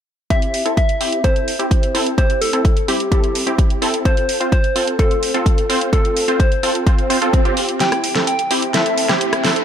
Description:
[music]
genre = EDM, festival progressive house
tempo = 128 BPM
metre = 4/4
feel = straight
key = C major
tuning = A4 = 441 Hz
[part]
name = soft struck synth lead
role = melody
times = 0.3-9.6 s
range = G4 to G5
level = -21 LUFS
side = left 2 dB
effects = chorus, cassette tape, tape echo
[part]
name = supersaw stab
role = riff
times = 0.3-9.6 s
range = C4 to C5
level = -20 LUFS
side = right 1 dB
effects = sidechain pumping, low-pass filter, tape echo
[part]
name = electronic kick drum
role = drums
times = 0.3-7.4 s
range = none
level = -16 LUFS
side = equal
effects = none
[part]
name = pop drum kit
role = drums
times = 0.3-9.6 s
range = hi-hat, rim click, snare drum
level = -22 LUFS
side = right 1 dB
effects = none
[part]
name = swell and riser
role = sound effects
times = 7.0-9.6 s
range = none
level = -26 LUFS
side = right 2 dB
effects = none
[part]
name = wide unison lead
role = arpeggios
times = 7.8-9.6 s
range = G4 to A4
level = -25 LUFS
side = right 3 dB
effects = ensemble chorus, sidechain pumping, tape echo
[sound]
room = light reverb, digital ambience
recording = none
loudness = -14 LUFS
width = side -9 dB against mid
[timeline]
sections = 0.3-7.8 A section; 7.8-9.6 B section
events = swell 7.0-7.8; build-up 7.8-9.6; drum fill 7.8-9.6; filter sweep on supersaw synth 7.8-9.6; filter sweep on analog synth lead 7.8-9.6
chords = 0.3 C; 4.1 F; 7.8 C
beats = | 0.30 0.77 1.24 1.71 | 2.18 2.65 3.12 3.59 | 4.05 4.52 4.99 5.46 | 5.93 6.40 6.87 7.34 | 7.80 8.27 8.74 9.21

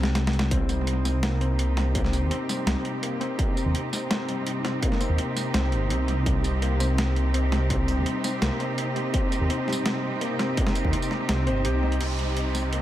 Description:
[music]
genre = half-time drum and bass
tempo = 167 BPM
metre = 4/4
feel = half-time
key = C minor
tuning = A4 = 441 Hz
[part]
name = felt-muted upright piano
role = arpeggios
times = 0.0-12.8 s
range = G3 to C5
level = -30 LUFS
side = left 2 dB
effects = low-pass filter, analog delay
[part]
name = dark detuned saw bass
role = bass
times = 0.0-12.8 s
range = G1 to Eb2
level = -25 LUFS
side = equal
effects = tube saturation
[part]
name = boom bap sampler-style drum kit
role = drums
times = 0.0-12.8 s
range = crash cymbal, hi-hat, snare drum, tambourine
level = -30 LUFS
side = equal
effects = overdrive, analog delay
[part]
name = rich chamber cello section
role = sustained chords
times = 0.5-12.8 s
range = C3 to G4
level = -30 LUFS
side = right 2 dB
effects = sidechain pumping, low-pass filter
[part]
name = electronic kick drum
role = drums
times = 0.5-10.9 s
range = none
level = -26 LUFS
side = equal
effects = distortion
[part]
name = downlifter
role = sound effects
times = 12.0-12.8 s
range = none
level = -36 LUFS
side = equal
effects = none
[part]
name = backwards swelling texture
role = texture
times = 12.2-12.8 s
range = Eb5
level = -42 LUFS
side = right 4 dB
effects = none
[sound]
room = light reverb, digital ambience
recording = echo-heavy mix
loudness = -23 LUFS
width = side -13 dB against mid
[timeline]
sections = 0.0-12.0 A section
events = drum fill 0.0-0.5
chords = 0.0 Cm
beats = 0.15 | 0.51 0.87 1.23 1.59 | 1.95 2.31 2.67 3.03 | 3.39 3.75 4.11 4.47 | 4.83 5.18 5.54 5.90 | 6.26 6.62 6.98 7.34 | 7.70 8.06 8.42 8.78 | 9.14 9.50 9.86 10.21 | 10.57 10.93 11.29 11.65 | 12.01 12.37 12.73

